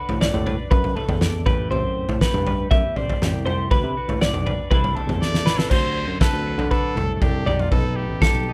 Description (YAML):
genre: math rock and midwest emo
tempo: 120 BPM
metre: 4/4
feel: straight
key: unclear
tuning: A4 = 439 Hz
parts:
  - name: twelve-string electric guitar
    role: accompaniment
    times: 0.0-8.5 s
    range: E2 to D5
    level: -35 LUFS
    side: equal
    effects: spring reverb
  - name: twelve-string electric guitar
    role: arpeggios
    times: 0.0-8.5 s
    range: A4 to E5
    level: -28 LUFS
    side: equal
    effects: none
  - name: barky tine electric piano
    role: bass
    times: 0.1-8.5 s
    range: A1 to D3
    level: -29 LUFS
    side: equal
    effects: none
  - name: loose indie drum kit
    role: drums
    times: 0.1-8.3 s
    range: crash cymbal, kick drum, snare drum, toms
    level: -24 LUFS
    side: equal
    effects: none
  - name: bright trumpet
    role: melody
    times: 5.2-8.5 s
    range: F4 to D5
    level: -31 LUFS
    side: equal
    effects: none
room: little or no reverb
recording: rough home demo mix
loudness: -21 LUFS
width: mono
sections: 0.0-5.7 A section; 5.7-8.5 B section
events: drum fill 5.2-5.7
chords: 0.0 D69; 1.5 Am9; 3.7 D6; 4.7 C69; 5.7 D7; 7.5 B7alt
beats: 0.21 0.71 1.21 | 1.71 2.21 2.71 3.21 | 3.71 4.21 4.71 5.21 | 5.71 6.21 6.71 7.21 | 7.72 8.22